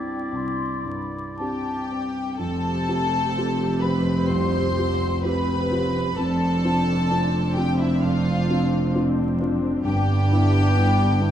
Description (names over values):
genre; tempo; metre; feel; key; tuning
cinematic, emotional film score for orchestra; 55-66 BPM; 4/4; rubato; unclear; A4 = 440 Hz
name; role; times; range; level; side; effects
clear oboe; second line; 0.0-2.0 s; D5; -35 LUFS; equal; none
mellow clarinet; second line; 0.0-1.9 s; E4; -34 LUFS; right 3 dB; none
mellow large flute ensemble; second line; 0.0-2.4 s; G5 to C6; -34 LUFS; left 3 dB; none
felt-muted upright piano; accompaniment; 0.0-11.3 s; C2 to G4; -26 LUFS; left 2 dB; none
warm studio violin section; melody; 1.4-11.3 s; E5 to C6; -30 LUFS; left 3 dB; none
clear studio violin section; second line; 1.4-11.3 s; E4 to C5; -30 LUFS; left 2 dB; none
dark studio viola section; accompaniment; 2.4-11.3 s; B3 to G4; -29 LUFS; right 1 dB; none
dark studio cello section; bass; 2.4-11.3 s; F2 to G2; -25 LUFS; right 2 dB; none
dark studio double bass section; bass; 2.4-11.3 s; F1 to G1; -25 LUFS; right 1 dB; none
room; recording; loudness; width
moderate scoring stage reverb, RT60 1.8 s; dark, warm production, vinyl crackle; -20 LUFS; side -10 dB against mid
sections
0.0-2.4 A section; 2.4-11.3 B section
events
none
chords
0.0 Cadd9; 2.4 Fadd9; 6.2 Dm7/F; 9.9 Em7/G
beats
0.34 1.40 | 2.41 3.36 4.30 5.24 | 6.18 7.11 8.02 8.95 | 9.86 10.77